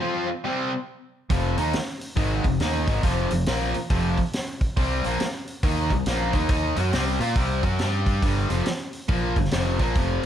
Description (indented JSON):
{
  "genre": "blues rock power trio and southern rock",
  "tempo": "139 BPM",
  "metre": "4/4",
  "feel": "swing 63% on 8ths",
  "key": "unclear",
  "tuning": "A4 = 440 Hz",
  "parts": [
    { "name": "cranked stack guitar", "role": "riff", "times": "0.0-10.3 s", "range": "F2 to Bb4", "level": "-25 LUFS", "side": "equal", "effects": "overdrive" },
    { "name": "growling fingered electric bass", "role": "bass", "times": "1.3-10.2 s", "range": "F1 to Bb2", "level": "-26 LUFS", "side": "equal", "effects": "overdrive" },
    { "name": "vintage drum kit", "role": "drums", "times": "1.3-10.3 s", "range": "hi-hat, kick drum, snare drum", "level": "-26 LUFS", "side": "equal", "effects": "none" }
  ],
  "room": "light reverb",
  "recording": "none",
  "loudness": "-22 LUFS",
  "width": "side -10 dB against mid",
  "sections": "0.0-10.3 A section",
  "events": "none",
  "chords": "0.0 C5; 1.3 F5; 4.8 C5; 7.8 G5"
}